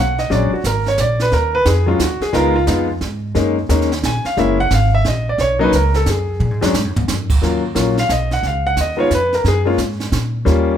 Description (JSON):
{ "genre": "jazz piano trio", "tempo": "177 BPM", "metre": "3/4", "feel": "swing 64% on 8ths", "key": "Eb minor", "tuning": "A4 = 440 Hz", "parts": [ { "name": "clear concert grand piano", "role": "melody", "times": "0.0-10.8 s", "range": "F#3 to Ab5", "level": "-17 LUFS", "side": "left 1 dB", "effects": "none" }, { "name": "upright bass", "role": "bass", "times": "0.0-10.8 s", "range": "Gb1 to Bb2", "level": "-19 LUFS", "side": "equal", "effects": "none" }, { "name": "jazz brush drum kit", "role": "drums", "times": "0.2-10.8 s", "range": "brushed snare drum, crash cymbal, hi-hat, kick drum, snare drum, toms", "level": "-23 LUFS", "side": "right 3 dB", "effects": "none" } ], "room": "light reverb", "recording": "band playing live in one room", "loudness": "-14 LUFS", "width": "side -9 dB against mid", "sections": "0.0-7.4 A section; 7.4-10.8 B section", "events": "drum fill 6.4-7.1; grand piano solo 7.4-10.8", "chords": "0.3 Bb7alt; 1.3 Ebmadd9; 2.3 Db7; 3.3 Gb69; 4.4 Gb9; 5.4 Bmaj7sus2; 6.4 Bb7(#5, no3) (rootless); 7.4 Ebm9; 8.4 Db7; 9.4 Gbadd9", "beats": "| 0.30 0.64 0.98 | 1.32 1.66 1.99 | 2.33 2.67 3.01 | 3.35 3.69 4.03 | 4.36 4.70 5.04 | 5.38 5.72 6.06 | 6.40 6.73 7.07 | 7.41 7.75 8.09 | 8.43 8.77 9.10 | 9.44 9.78 10.12 | 10.46" }